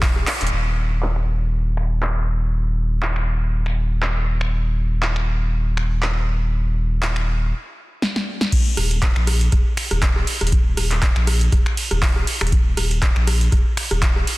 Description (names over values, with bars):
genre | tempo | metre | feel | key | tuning
acid house | 120 BPM | 4/4 | swing 55% on 16ths | unclear | A4 = 440 Hz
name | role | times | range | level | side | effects
saturated sub bass | bass | 0.0-14.2 s | Eb1 to Bb1 | -20 LUFS | equal | tube saturation, sidechain pumping
electro analog drum machine | drums | 0.0-14.4 s | crash cymbal, finger snaps, handclaps, hi-hat, ride cymbal, rim click, snare drum | -24 LUFS | equal | overdrive, low-pass filter on hats, low-pass filter on snare, low-pass filter on cymbals, low-pass filter on room
electronic kick drum | drums | 0.0-0.1, 8.5-14.1 s | none | -19 LUFS | equal | overdrive
room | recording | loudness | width
little or no reverb | dense, heavily limited modern master | -18 LUFS | side -20 dB against mid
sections
0.5-8.5 A section; 8.5-14.4 B section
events
drum fill 0.3, 8.0-8.5; band accent 0.3; stop 7.5-8.5; drop 8.5-14.4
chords
none